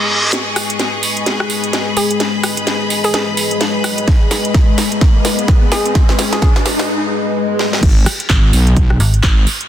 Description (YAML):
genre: bass house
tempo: 128 BPM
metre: 4/4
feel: swing 59% on 16ths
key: G# minor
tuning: A4 = 440 Hz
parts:
  - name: dark analog pad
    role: sustained chords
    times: 0.0-9.7 s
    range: G#3 to D#5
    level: -20 LUFS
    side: left 4 dB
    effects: chorus, sidechain pumping
  - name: reverse cymbal, riser and swell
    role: sound effects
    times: 0.0-7.8 s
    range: none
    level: -22 LUFS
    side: equal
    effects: none
  - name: bright studio string section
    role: texture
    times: 0.0-6.9 s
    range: G#4 to C#6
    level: -22 LUFS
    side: left 2 dB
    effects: sidechain pumping
  - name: house drum kit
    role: drums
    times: 0.3-9.7 s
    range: crash cymbal, handclaps, hi-hat, rim click, snare drum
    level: -19 LUFS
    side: right 1 dB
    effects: high-pass filter on cymbals, high-pass filter on snare, high-pass filter on hats
  - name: hollow square pluck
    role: melody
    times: 2.0-6.5 s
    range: G#4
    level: -22 LUFS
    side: equal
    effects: chorus, digital delay
  - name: electronic kick drum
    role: drums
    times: 4.1-9.3 s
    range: none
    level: -12 LUFS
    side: equal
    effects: none
  - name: wobble bass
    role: bass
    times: 7.8-9.5 s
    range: G#1 to B1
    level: -13 LUFS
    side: equal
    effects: chorus, overdrive, sidechain pumping
  - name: metallic FM bass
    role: bass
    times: 9.0-9.2 s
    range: G#1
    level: -11 LUFS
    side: equal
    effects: sidechain pumping
room: light reverb, digital ambience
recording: dense, heavily limited modern master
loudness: -12 LUFS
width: side -11 dB against mid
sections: 0.3-7.8 A section; 7.8-9.7 B section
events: reverse cymbal 0.0-0.3; build-up 0.3-7.8; drum fill 0.3-6.9, 7.6; riser 0.3-6.9; break 6.9-7.8; swell 6.9-7.8; drop 7.8-9.7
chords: 0.3 G#m